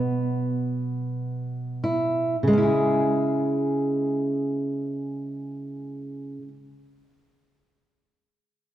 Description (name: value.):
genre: folk.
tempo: 33-37 BPM (dotted quarters).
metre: 6/8.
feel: straight.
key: C# minor.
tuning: A4 = 440 Hz.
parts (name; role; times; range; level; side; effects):
fingerpicked steel-string acoustic guitar; accompaniment; 0.0-6.6 s; B2 to B4; -23 LUFS; right 1 dB; none.
room: moderate scoring stage reverb, RT60 2.1 s.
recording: dark, warm production.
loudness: -23 LUFS.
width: side -12 dB against mid.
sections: 0.0-2.4 A section; 2.4-6.0 B section.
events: slowing down 0.0-2.4.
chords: 0.0 Bsus4; 2.4 C#m.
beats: 0.69 | 2.42 4.24.